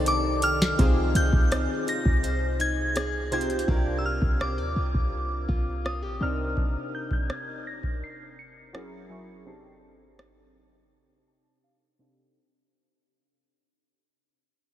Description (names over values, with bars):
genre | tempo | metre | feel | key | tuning
contemporary R&B | 83 BPM | 4/4 | straight | C minor | A4 = 439 Hz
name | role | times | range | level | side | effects
warm analog keys | accompaniment | 0.0-12.4 s | C3 to A5 | -34 LUFS | right 1 dB | chorus, low-pass filter
deep dark ambient pad | sustained chords | 0.0-0.8 s | Eb3 to A5 | -36 LUFS | equal | chorus, built-in reverb, sidechain pumping
picked plugged-in steel-string acoustic guitar | arpeggios | 0.0-6.6 s | C4 to D5 | -34 LUFS | left 2 dB | low-pass filter, analog delay
clean 808-style bass | bass | 0.0-6.6 s | Bb1 to Eb2 | -28 LUFS | equal | none
glassy synth bell | melody | 0.1-12.0 s | D6 to Db7 | -31 LUFS | left 1 dB | chorus, low-pass filter, analog delay
booming analog drum machine | drums | 0.1-10.4 s | hi-hat, kick drum, rim click, snare drum | -26 LUFS | equal | none
room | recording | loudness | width
moderate huge ambient reverb, RT60 6.9 s | dreamy mix soaked in reverb, faint mains hum | -24 LUFS | side -12 dB against mid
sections
0.8-12.4 A section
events
drum fill 0.1-0.8; fade-out 0.8-12.4; synth keys fill 10.9-12.4; drums muted 11.6-12.4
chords
0.0 Cm69; 0.8 Bb9sus4/C; 3.7 Ebmaj9/C; 6.2 Cm9; 8.7 F#9; 9.5 Cm69